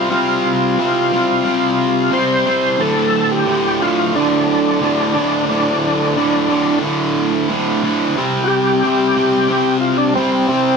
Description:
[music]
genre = rock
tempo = 90 BPM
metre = 4/4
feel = straight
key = unclear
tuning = A4 = 440 Hz
[part]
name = overdriven tonewheel organ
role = melody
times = 0.0-10.8 s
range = C4 to C5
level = -17 LUFS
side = equal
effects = slow rotary speaker, chorus vibrato
[part]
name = overdriven electric guitar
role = riff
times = 0.0-10.8 s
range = D2 to C4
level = -16 LUFS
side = equal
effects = none
[sound]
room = little or no reverb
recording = dry, close 1970s-style studio recording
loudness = -14 LUFS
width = side -5 dB against mid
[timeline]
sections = 0.0-8.2 A section; 8.2-10.8 B section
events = tonewheel organ solo 8.2-10.8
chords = 0.0 Csus4; 2.8 D5; 8.2 C5

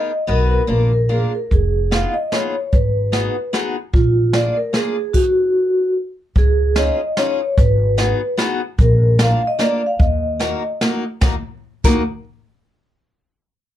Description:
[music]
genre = musette waltz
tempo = 148 BPM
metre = 3/4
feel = swing 54% on 8ths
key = Eb minor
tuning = A4 = 440 Hz
[part]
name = vibraphone with soft mallets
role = melody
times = 0.0-10.8 s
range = F4 to F5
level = -19 LUFS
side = equal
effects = none
[part]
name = picked steel-string acoustic guitar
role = accompaniment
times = 0.0-12.0 s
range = Bb3 to B4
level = -22 LUFS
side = left 2 dB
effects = none
[part]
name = upright bass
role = bass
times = 0.3-12.0 s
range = F1 to Eb2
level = -17 LUFS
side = equal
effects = none
[part]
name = jazz brush drum kit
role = drums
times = 1.5-11.9 s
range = crash cymbal, hi-hat, kick drum, snare drum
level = -18 LUFS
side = equal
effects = none
[sound]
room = little or no reverb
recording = dark, warm production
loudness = -15 LUFS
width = side -12 dB against mid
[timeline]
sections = 0.0-6.4 A section; 6.4-11.2 B section; 11.2-12.4 C section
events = none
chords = 0.3 B; 0.7 Bb; 1.5 Fm7b5; 2.7 Abm7; 3.9 Bb7; 5.1 N.C.; 6.4 Dbadd9; 7.6 Abm7; 8.8 Bb; 10.0 Ebm

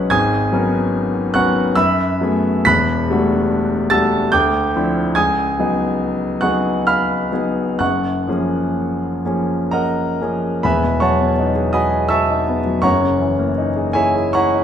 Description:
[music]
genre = classical, impressionist solo piano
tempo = 61-84 BPM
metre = 3/4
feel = rubato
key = F# major, E major from 10.6 s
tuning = A4 = 439 Hz
[part]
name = clear concert grand piano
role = solo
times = 0.0-14.6 s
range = E1 to B6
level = -15 LUFS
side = equal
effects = none
[sound]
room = wet recital hall reverb, RT60 1.3 s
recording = minimal, uncompressed stereo recording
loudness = -15 LUFS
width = side -9 dB against mid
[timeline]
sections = 0.0-10.6 A section; 10.6-14.6 B section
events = none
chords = 0.1 G#m11; 1.8 F#m11; 2.7 Em11; 4.3 Dm11; 5.2 C#9sus4; 7.8 F#maj9; 10.6 Emaj9; 12.9 F#13

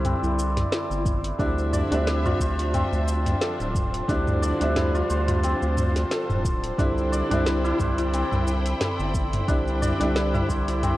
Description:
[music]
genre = organic downtempo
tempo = 89 BPM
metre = 4/4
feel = swing 55% on 16ths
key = D dorian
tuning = A4 = 443 Hz
[part]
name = felt-muted upright piano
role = accompaniment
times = 0.0-11.0 s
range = D3 to E5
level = -30 LUFS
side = right 1 dB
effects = sidechain pumping, tape echo, shimmer reverb
[part]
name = santur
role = arpeggios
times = 0.0-11.0 s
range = C4 to D5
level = -27 LUFS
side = left 1 dB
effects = tape echo, shimmer reverb
[part]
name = round analog bass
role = bass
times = 0.0-10.9 s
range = D1 to D2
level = -26 LUFS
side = equal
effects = transformer saturation, sidechain pumping
[part]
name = afro-pop drum kit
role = drums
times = 0.0-11.0 s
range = hi-hat, shaker, snare drum, toms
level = -29 LUFS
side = equal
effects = none
[part]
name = electronic kick drum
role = drums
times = 1.1-10.6 s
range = none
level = -27 LUFS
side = equal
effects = none
[part]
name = clear studio string section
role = sustained chords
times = 1.4-11.0 s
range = F3 to B5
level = -33 LUFS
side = equal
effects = sidechain pumping, shimmer reverb
[sound]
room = light reverb, studio ambience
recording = worn, warbling old tape, cassette tape, warbly pitch drift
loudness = -21 LUFS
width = side -16 dB against mid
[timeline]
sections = 0.0-11.0 A section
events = none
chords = 0.0 C; 1.4 Dm9; 6.8 Cmaj7

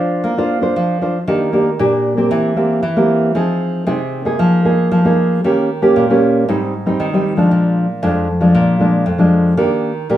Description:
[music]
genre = samba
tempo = 116 BPM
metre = 4/4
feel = straight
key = Eb major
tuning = A4 = 441 Hz
[part]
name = nylon-string guitar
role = solo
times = 0.0-10.2 s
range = F2 to C5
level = -13 LUFS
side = equal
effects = none
[sound]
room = moderate studio reverb, RT60 0.6 s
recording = studio reverb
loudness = -13 LUFS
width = side -12 dB against mid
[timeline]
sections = 0.0-1.3 A section; 1.3-10.2 B section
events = none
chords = 0.0 Bbadd9; 1.3 Ebmaj7; 2.3 C7/E; 3.4 Fm7; 4.4 Bb7sus4/F; 5.4 Eb7; 6.5 Abmaj7; 7.5 Bb7; 9.6 Ebmaj7

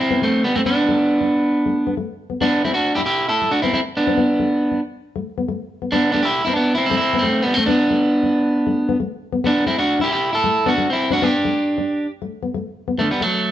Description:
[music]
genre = highlife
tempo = 136 BPM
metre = 4/4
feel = straight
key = unclear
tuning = A4 = 440 Hz
[part]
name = electric guitar at the edge of break-up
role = melody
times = 0.0-13.5 s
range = D3 to A4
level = -16 LUFS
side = right 1 dB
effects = none
[part]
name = nylon-string guitar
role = accompaniment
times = 0.1-13.3 s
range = A3 to D4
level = -24 LUFS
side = left 4 dB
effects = none
[sound]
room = moderate large studio reverb, RT60 1.2 s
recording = band playing live in one room, nothing above 8.0 kHz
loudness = -16 LUFS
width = side -12 dB against mid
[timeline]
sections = 0.0-13.0 A section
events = none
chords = 0.0 Am; 0.7 Asus24; 2.4 Asus4; 4.2 Asus24; 5.0 Asus2; 6.8 Am; 7.7 Asus24; 9.4 Asus4; 11.2 Gadd9; 12.1 Asus2

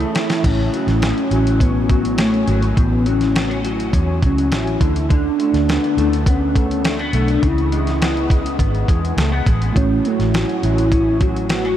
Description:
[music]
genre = indie pop, bedroom pop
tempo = 103 BPM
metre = 4/4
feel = straight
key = A major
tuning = A4 = 440 Hz
[part]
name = soft octave-layered synth lead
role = melody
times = 0.0-11.8 s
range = A3 to F#4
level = -20 LUFS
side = equal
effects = phaser, analog chorus, tape echo
[part]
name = electric guitar through a small old amp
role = accompaniment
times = 0.0-11.8 s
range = A2 to G#4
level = -23 LUFS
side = left 2 dB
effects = ensemble chorus, warbly pitch drift
[part]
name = mellow tine electric piano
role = accompaniment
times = 0.0-0.5, 9.7-11.8 s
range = A3 to C#5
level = -28 LUFS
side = right 7 dB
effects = medium stereo tremolo, cassette tape
[part]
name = vintage muted fingered electric bass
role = bass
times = 0.0-11.8 s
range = G#1 to E2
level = -20 LUFS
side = equal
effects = none
[part]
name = dusty soul sampler-style drum kit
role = drums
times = 0.0-11.8 s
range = crash cymbal, hi-hat, kick drum, snare drum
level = -20 LUFS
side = equal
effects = none
[sound]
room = light reverb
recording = none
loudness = -15 LUFS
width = side -11 dB against mid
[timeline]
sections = 0.4-11.8 A section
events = drum fill 0.0-0.4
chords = 0.4 A6; 4.8 D5; 7.4 C#m7; 9.8 A6

